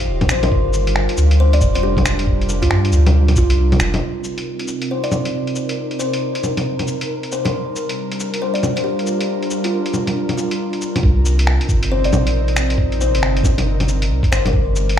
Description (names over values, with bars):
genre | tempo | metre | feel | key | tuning
future garage | 137 BPM | 4/4 | swing 62% on 16ths | unclear | A4 = 440 Hz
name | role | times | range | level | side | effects
airy breathy pad | sustained chords | 0.0-15.0 s | C3 to Bb4 | -24 LUFS | right 2 dB | chorus, sidechain pumping
soft dub sub bass | bass | 0.0-4.0, 11.0-15.0 s | Eb1 to G2 | -16 LUFS | equal | sidechain pumping
electronic kick drum | drums | 0.2-3.5, 11.0-14.6 s | none | -17 LUFS | equal | small room ambience
lo-fi sampler-style drum kit | drums | 0.2-15.0 s | bongos, cabasa, finger snaps, hi-hat | -22 LUFS | left 1 dB | small room ambience
kalimba | melody | 0.3-14.6 s | F4 to D5 | -23 LUFS | left 2 dB | tape echo
room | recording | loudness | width
light reverb | played on a big sound system in a bare room, large studio reverb | -15 LUFS | side -10 dB against mid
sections
0.0-4.0 A section; 4.0-11.0 B section; 11.0-15.0 A section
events
break 3.6-4.0; filter sweep on analog synth pad 4.0-11.0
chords
0.0 Ebadd9; 0.5 Gm7; 4.0 Cm7; 7.5 Gm7; 11.0 Cm7